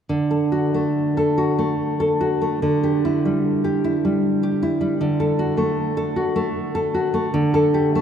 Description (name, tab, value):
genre	classical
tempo	68-79 BPM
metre	3/4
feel	rubato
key	D major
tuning	A4 = 444 Hz
part	nylon-string guitar	accompaniment	0.1-8.0 s	D3 to A4	-18 LUFS	equal	none
room	wet cathedral reverb, RT60 5.3 s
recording	recorded in a church or concert hall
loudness	-18 LUFS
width	side -8 dB against mid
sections	0.1-8.0 A section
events	none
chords	0.1 D; 2.6 Em7/D; 5.0 D; 7.3 Dsus4